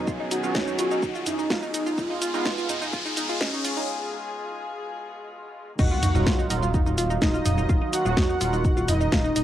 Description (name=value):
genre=melodic techno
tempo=126 BPM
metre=4/4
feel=straight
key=Eb minor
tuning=A4 = 440 Hz
part: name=wide unison lead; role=melody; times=0.0-9.4 s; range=Db4 to Gb4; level=-30 LUFS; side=equal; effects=analog chorus, sidechain pumping, tape echo
part: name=warm chamber string section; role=sustained chords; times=0.0-9.4 s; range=Cb3 to Ab4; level=-35 LUFS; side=left 2 dB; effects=sidechain pumping, cassette tape
part: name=sync-sweep polysynth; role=stabs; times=0.0-2.7, 6.2-8.6 s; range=Gb3 to Gb4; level=-31 LUFS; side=right 8 dB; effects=chorus, sidechain pumping, cassette tape, analog delay
part: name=bowed-like drone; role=drone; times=0.0-3.9 s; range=Eb3 to Eb4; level=-49 LUFS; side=left 3 dB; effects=none
part: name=riser and impact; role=sound effects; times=0.0-7.7 s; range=none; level=-32 LUFS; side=equal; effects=none
part: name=analog pluck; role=arpeggios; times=0.1-9.4 s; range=Eb4 to F5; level=-30 LUFS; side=equal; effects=chorus, phaser, sidechain pumping, cassette tape, analog delay
part: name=electronic kick drum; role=drums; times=0.1-9.2 s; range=none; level=-24 LUFS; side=equal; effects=cassette tape
part: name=house drum kit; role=drums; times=0.1-9.4 s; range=crash cymbal, hi-hat, shaker, snare drum, toms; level=-27 LUFS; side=equal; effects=cassette tape
part: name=soft supersaw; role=second line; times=5.8-9.4 s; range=Eb5 to Gb5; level=-34 LUFS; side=equal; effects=sidechain pumping, cassette tape, analog delay
part: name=round analog bass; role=bass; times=5.8-9.4 s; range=Eb1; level=-27 LUFS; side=equal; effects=sidechain pumping
room=moderate small room reverb, RT60 0.5 s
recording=home recording on cassette, high-pass filter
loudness=-22 LUFS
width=side -12 dB against mid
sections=0.0-5.8 A section; 5.8-9.4 B section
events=build-up 0.0-5.8; riser 0.0-3.9; filter sweep on analog synth lead 0.0-5.8; break 3.9-5.8; drop 5.8-9.4; impact 5.8-7.7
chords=0.0 Db7sus4; 2.0 Fdim; 5.8 Ebmadd9